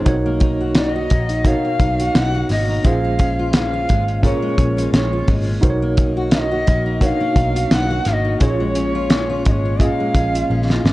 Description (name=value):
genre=indie pop, bedroom pop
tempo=86 BPM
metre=4/4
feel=swing 55% on 16ths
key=unclear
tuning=A4 = 440 Hz
part: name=picked steel-string acoustic guitar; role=accompaniment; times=0.0-10.9 s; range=Bb2 to Gb4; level=-24 LUFS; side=left 2 dB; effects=analog chorus, warbly pitch drift
part: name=tine electric piano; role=accompaniment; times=0.0-10.9 s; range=Db4 to Eb5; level=-23 LUFS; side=right 2 dB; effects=overdrive, fast tremolo
part: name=vintage muted picked electric bass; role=bass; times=0.1-10.9 s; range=Ab1 to Cb2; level=-22 LUFS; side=equal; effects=none
part: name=cloth-damped thuddy drum kit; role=drums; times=0.1-10.9 s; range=hi-hat, kick drum, snare drum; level=-17 LUFS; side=equal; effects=none
part: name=breathy bright shakuhachi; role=melody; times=0.8-10.9 s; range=Db5 to Gb5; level=-23 LUFS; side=equal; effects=wide subtle chorus
room=light reverb, small room ambience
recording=worn, warbling old tape, cassette tape, warbly pitch drift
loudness=-15 LUFS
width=side -18 dB against mid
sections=0.1-10.9 A section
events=drum fill 10.5-10.9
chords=0.1 Cbmaj7; 2.8 Bbm7; 5.6 Cbmaj7; 8.4 Bbm7